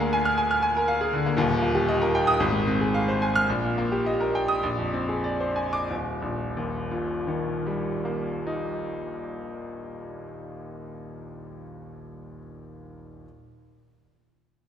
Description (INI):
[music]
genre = classical, virtuoso piano study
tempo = 90-121 BPM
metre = 4/4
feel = rubato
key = Eb major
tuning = A4 = 443 Hz
[part]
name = clear grand piano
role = solo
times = 0.0-13.3 s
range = Eb1 to F6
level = -24 LUFS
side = equal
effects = none
[sound]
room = wet concert hall reverb, RT60 2.2 s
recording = none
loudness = -23 LUFS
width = side -9 dB against mid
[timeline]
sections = 0.0-5.9 A section; 5.9-11.0 B section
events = slowing down 0.4-5.9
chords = 0.0 Bb7/D; 1.4 Eb; 2.4 Fm/Ab; 3.5 Eb/Bb; 4.6 Bb9; 5.9 Eb